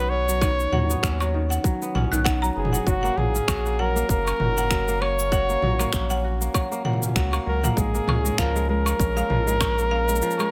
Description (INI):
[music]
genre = folktronica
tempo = 98 BPM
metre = 4/4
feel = swing 56% on 16ths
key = F# major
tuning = A4 = 442 Hz
[part]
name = clear flugelhorn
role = melody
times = 0.0-10.5 s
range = F#4 to C#5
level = -28 LUFS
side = equal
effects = tape echo
[part]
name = buzzing marimba with hard mallets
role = second line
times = 0.0-10.5 s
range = E#5 to F#6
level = -34 LUFS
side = equal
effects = digital delay
[part]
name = kora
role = arpeggios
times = 0.0-10.5 s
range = D#3 to F#4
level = -31 LUFS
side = equal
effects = none
[part]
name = warm sub bass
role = bass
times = 0.0-10.2 s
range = F#1 to D#2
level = -28 LUFS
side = equal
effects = tube saturation
[part]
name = organic electronic drum kit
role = drums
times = 0.3-10.5 s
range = finger snaps, shaker, toms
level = -30 LUFS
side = equal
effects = none
[part]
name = electronic kick drum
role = drums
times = 0.4-9.7 s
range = none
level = -27 LUFS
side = equal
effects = none
[sound]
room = digital ambience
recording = none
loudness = -23 LUFS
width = mono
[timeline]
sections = 0.0-10.5 A section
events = none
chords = 0.0 Badd9; 2.9 F#; 7.8 A#m7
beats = | 0.42 1.03 1.65 2.26 | 2.87 3.48 4.09 4.71 | 5.32 5.93 6.54 7.16 | 7.77 8.38 8.99 9.61 | 10.22